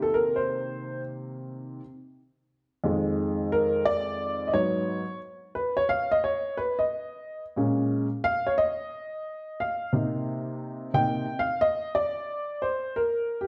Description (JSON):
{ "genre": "hip hop", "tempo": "89 BPM", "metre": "4/4", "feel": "swing 65% on 16ths", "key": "unclear", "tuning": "A4 = 440 Hz", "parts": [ { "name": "dark upright piano", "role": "solo", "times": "0.0-13.5 s", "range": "F2 to G5", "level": "-28 LUFS", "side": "equal", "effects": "none" } ], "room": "wet recital hall reverb, RT60 1.3 s", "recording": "dark, warm production", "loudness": "-28 LUFS", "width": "mono", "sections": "0.0-13.5 A section", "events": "upright piano solo 0.0-13.5", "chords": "0.0 Cm7; 1.8 Fm7; 4.5 Abm7; 7.6 Bbm7; 9.9 Cm9; 12.6 N.C.", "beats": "0.15 0.82 1.50 | 2.17 2.85 3.52 4.20 | 4.87 5.54 6.22 6.89 | 7.57 8.24 8.91 9.59 | 10.26 10.94 11.61 12.29 | 12.96" }